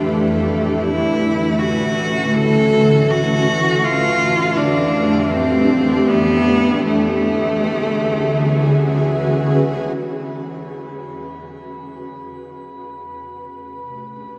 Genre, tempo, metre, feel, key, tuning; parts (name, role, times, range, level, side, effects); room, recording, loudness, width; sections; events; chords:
ambient; free time; A4 = 436 Hz
rich cello; melody; 0.0-9.1 s; A3 to A4; -21 LUFS; equal; shimmer reverb, tape echo
ethereal airy pad; sustained chords; 0.0-14.4 s; E2 to B4; -21 LUFS; equal; ensemble chorus, built-in reverb, tremolo, shimmer reverb
organ-like drone; drone; 0.0-10.0 s; E3; -31 LUFS; equal; ensemble chorus, built-in reverb
glass harmonica; texture; 0.0-14.4 s; E5 to B5; -31 LUFS; equal; shimmer reverb
wet huge ambient reverb, RT60 8.2 s; -17 LUFS; mono
0.0-10.0 A section; 10.0-14.4 B section
0.0 F; 0.8 Dadd9; 3.8 F; 6.9 Dadd9; 10.0 E; 13.0 Csus2